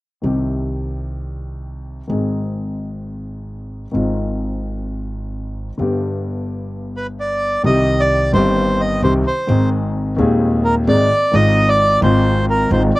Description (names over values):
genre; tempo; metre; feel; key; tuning
tango; 130 BPM; 4/4; rubato; C minor; A4 = 439 Hz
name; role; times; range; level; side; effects
warm concert grand piano; accompaniment; 0.2-12.9 s; Eb1 to Ab4; -18 LUFS; left 1 dB; none
upright bass; bass; 0.2-12.9 s; G1 to Eb2; -24 LUFS; right 1 dB; none
bandoneon; melody; 7.0-13.0 s; Bb4 to Eb5; -16 LUFS; right 1 dB; none
room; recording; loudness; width
little or no reverb; recorded outdoors, with no room sound; -15 LUFS; side -19 dB against mid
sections
0.2-7.6 A section; 7.6-13.0 B section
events
none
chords
0.2 Cm; 2.1 Ab; 3.9 Fm7/Ab; 5.8 G; 7.6 Cm; 9.5 Ab; 11.3 Fm7/Ab